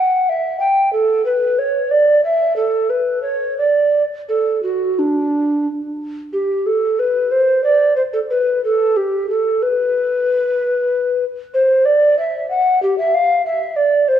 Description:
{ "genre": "classical, baroque-style fantasia for unaccompanied recorder", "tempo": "85-97 BPM", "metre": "4/4", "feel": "rubato", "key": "D major", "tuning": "A4 = 440 Hz", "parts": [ { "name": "mellow hollow tenor recorder", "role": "solo", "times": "0.0-14.2 s", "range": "D4 to G5", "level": "-14 LUFS", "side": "equal", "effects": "none" } ], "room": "moderate concert hall reverb, RT60 2.1 s", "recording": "worn, warbling old tape, cassette tape, warbly pitch drift, small room ambience", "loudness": "-14 LUFS", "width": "side -10 dB against mid", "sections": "0.0-6.3 A section; 6.3-14.2 A section", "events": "none", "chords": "none", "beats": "0.29 | 0.93 1.58 2.23 2.90 | 3.58 4.29 4.98 5.66 | 6.34 7.00 7.64 8.30 | 8.96 9.61 10.26 10.91 | 11.54 12.18 12.82 13.45 | 14.08" }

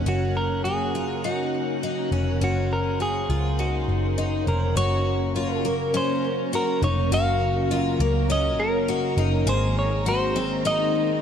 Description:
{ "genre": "dream pop", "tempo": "102 BPM", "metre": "4/4", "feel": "straight", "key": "Gb lydian", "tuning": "A4 = 439 Hz", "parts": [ { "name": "ensemble organ-string", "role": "sustained chords", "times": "0.0-11.2 s", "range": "Db3 to Gb5", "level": "-27 LUFS", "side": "right 2 dB", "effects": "ensemble chorus" }, { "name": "picked twelve-string acoustic guitar", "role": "arpeggios", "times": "0.0-11.2 s", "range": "Bb3 to Ab4", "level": "-28 LUFS", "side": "left 5 dB", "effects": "wide subtle chorus, ping-pong delay" }, { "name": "vintage muted picked electric bass", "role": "bass", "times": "0.0-11.2 s", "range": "F1 to Db2", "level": "-25 LUFS", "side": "equal", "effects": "none" }, { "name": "clean electric guitar", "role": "melody", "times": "0.1-11.2 s", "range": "Gb4 to F5", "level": "-27 LUFS", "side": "equal", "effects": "ping-pong delay" } ], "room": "light reverb, digital ambience", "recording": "dark, warm production", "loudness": "-21 LUFS", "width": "side -8 dB against mid", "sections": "0.0-4.8 A section; 4.8-11.2 B section", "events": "none", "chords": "0.1 Gbmaj7; 9.5 Ab9", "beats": "| 0.07 0.66 1.24 1.83 | 2.42 3.01 3.60 4.18 | 4.77 5.36 5.95 6.54 | 7.12 7.71 8.30 8.89 | 9.48 10.07 10.65" }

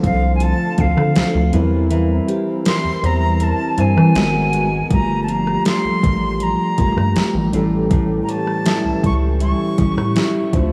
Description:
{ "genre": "contemporary R&B", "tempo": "80 BPM", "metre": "4/4", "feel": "straight", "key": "unclear", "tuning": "A4 = 440 Hz", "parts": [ { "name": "mellow tine electric piano", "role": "accompaniment", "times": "0.0-10.7 s", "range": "F3 to C5", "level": "-24 LUFS", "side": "equal", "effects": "none" }, { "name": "warm analog pad", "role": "sustained chords", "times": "0.0-10.7 s", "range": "D3 to Bb4", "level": "-28 LUFS", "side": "equal", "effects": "chorus" }, { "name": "nylon-string guitar", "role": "arpeggios", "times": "0.0-10.7 s", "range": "A2 to Bb4", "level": "-28 LUFS", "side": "equal", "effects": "analog delay" }, { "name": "rubbery square bass", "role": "bass", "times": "0.0-10.7 s", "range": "G1 to E3", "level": "-21 LUFS", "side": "equal", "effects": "none" }, { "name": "smooth R&B drum kit", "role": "drums", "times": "0.0-10.7 s", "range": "hi-hat, kick drum, rim click, snare drum", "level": "-23 LUFS", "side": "equal", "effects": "overdrive" }, { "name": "bright concert flute", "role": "melody", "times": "0.1-10.5 s", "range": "F5 to C#6", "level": "-25 LUFS", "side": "equal", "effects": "analog delay" } ], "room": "moderate plate reverb, RT60 2.8 s", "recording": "dreamy mix soaked in reverb", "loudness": "-17 LUFS", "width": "mono", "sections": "0.0-10.7 A section", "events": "kick muted 1.9-4.9", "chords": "0.0 Dm7; 1.5 C7/E; 4.2 Abm9; 4.9 Gm9; 7.5 A7", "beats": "0.41 1.16 | 1.91 2.66 3.41 4.16 | 4.91 5.66 6.41 7.16 | 7.91 8.66 9.41 10.16" }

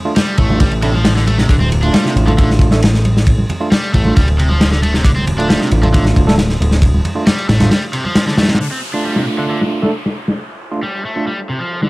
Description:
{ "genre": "breakbeat, breaks", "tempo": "135 BPM", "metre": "4/4", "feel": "straight", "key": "D minor", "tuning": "A4 = 440 Hz", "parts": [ { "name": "overdriven tine electric piano", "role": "stabs", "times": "0.1-11.3 s", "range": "A3 to A4", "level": "-20 LUFS", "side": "right 2 dB", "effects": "fast tremolo, low-pass filter, dub echo" }, { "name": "cranked stack guitar", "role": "riff", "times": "0.2-11.9 s", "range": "C3 to D4", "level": "-20 LUFS", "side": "equal", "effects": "overdrive, low-pass filter, dub echo" }, { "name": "crunchy breakbeat drum kit", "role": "drums", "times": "0.2-11.9 s", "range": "kick drum, ride cymbal, snare drum", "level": "-14 LUFS", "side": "equal", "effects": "low-pass filter on kick, low-pass filter on cymbals, low-pass filter on snare, low-pass filter on room" }, { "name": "congas and bongos", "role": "percussion", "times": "0.2-8.6 s", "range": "none", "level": "-23 LUFS", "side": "right 1 dB", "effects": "none" }, { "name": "fat analog bass", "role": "bass", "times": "0.4-7.7 s", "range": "D1 to A1", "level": "-14 LUFS", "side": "equal", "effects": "none" }, { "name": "downlifter", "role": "sound effects", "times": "8.6-11.9 s", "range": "none", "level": "-27 LUFS", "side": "equal", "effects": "none" } ], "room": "light reverb", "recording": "vinyl crackle", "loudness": "-11 LUFS", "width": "side -21 dB against mid", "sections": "0.0-8.6 A section; 8.6-11.9 B section", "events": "kick drops out 7.7-8.6", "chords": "0.0 Dm", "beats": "0.16 0.60 1.05 | 1.49 1.94 2.38 2.83 | 3.27 3.72 4.16 4.61 | 5.05 5.49 5.94 6.38 | 6.83 7.27 7.72 8.16 | 8.61 9.05 9.49 9.94 | 10.38 10.83 11.27 11.72" }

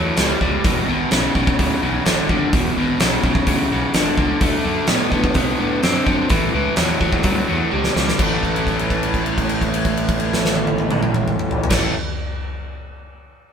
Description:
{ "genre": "blues rock power trio and southern rock", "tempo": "127 BPM", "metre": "4/4", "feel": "straight", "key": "A mixolydian", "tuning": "A4 = 440 Hz", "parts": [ { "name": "overdriven electric guitar", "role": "riff", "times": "0.0-11.9 s", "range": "E2 to C4", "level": "-20 LUFS", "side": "equal", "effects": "none" }, { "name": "fuzz fingered electric bass", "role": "bass", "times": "0.0-11.9 s", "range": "E1 to C3", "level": "-25 LUFS", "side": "equal", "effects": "overdrive" }, { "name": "huge arena drum kit", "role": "drums", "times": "0.2-11.8 s", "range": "crash cymbal, hi-hat, kick drum, snare drum, toms", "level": "-20 LUFS", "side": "equal", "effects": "none" } ], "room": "moderate studio reverb, RT60 0.6 s", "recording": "band playing live in one room", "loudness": "-16 LUFS", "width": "side -7 dB against mid", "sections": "0.0-8.2 A section; 8.2-12.0 B section", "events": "drum fill 7.7-8.2; held note 8.2-11.7", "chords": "0.0 A7; 0.7 E7; 4.4 D7; 6.3 A7; 8.2 A5", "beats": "0.18 | 0.65 1.12 1.59 2.06 | 2.53 3.00 3.48 3.95 | 4.42 4.89 5.36 5.83 | 6.30 6.78 7.25 7.72 | 8.20 8.67 9.14 9.62 | 10.09 10.57 11.04 11.52" }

